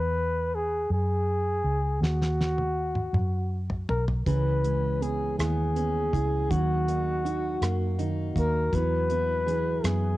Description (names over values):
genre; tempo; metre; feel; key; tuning
six-eight pop ballad; 54 BPM (dotted quarters); 6/8; straight; unclear; A4 = 439 Hz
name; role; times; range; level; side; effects
breathy flugelhorn; melody; 0.0-10.2 s; F#4 to B4; -29 LUFS; left 1 dB; cassette tape, plate reverb
vintage muted fingered electric bass; bass; 0.0-10.2 s; B1 to F#2; -27 LUFS; equal; none
damped 70s drum kit; drums; 2.0-10.0 s; hi-hat, kick drum, rim click, snare drum, toms; -31 LUFS; equal; cassette tape
felt-muted upright piano; accompaniment; 4.3-10.2 s; C#3 to E4; -33 LUFS; right 6 dB; cassette tape, plate reverb
fingerpicked plugged-in steel-string acoustic guitar; arpeggios; 4.3-10.2 s; E3 to G#4; -36 LUFS; left 5 dB; cassette tape, plate reverb, analog delay
room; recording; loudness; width
light reverb; home recording on cassette; -24 LUFS; side -17 dB against mid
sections
0.0-10.2 A section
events
drum fill 2.0-4.3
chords
0.0 Eadd9; 2.0 B/D#; 4.3 C#m7; 6.5 D#m; 8.7 Eadd9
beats
0.91 | 2.02 3.14 | 4.27 5.39 | 6.51 7.62 | 8.73 9.84